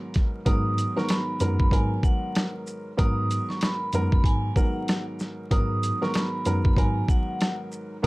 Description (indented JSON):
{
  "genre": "hip hop, boom-bap hip-hop",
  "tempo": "95 BPM",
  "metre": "4/4",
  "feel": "swing 60% on 16ths",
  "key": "G# minor",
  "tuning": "A4 = 440 Hz",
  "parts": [
    { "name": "dark upright piano", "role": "accompaniment", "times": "0.0-8.1 s", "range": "G#2 to A#4", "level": "-29 LUFS", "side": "equal", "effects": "cassette tape, high-pass filter, low-pass filter" },
    { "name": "dusty soul sampler-style drum kit", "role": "drums", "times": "0.1-8.1 s", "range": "hi-hat, kick drum, rim click, shaker, snare drum", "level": "-23 LUFS", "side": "equal", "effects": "none" },
    { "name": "vibraphone with medium hard mallets", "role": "melody", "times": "0.5-8.1 s", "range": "F#5 to D#6", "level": "-31 LUFS", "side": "right 1 dB", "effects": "high-pass filter, low-pass filter, slapback echo" },
    { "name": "mellow tine electric piano", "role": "bass", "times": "0.5-8.1 s", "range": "F#2 to G#2", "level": "-26 LUFS", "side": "equal", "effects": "medium stereo tremolo" }
  ],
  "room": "light reverb",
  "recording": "dark, warm production, vinyl crackle",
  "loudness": "-22 LUFS",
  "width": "side -22 dB against mid",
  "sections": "0.5-8.1 A section",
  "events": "break 0.0-0.5",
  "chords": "0.5 G#m9"
}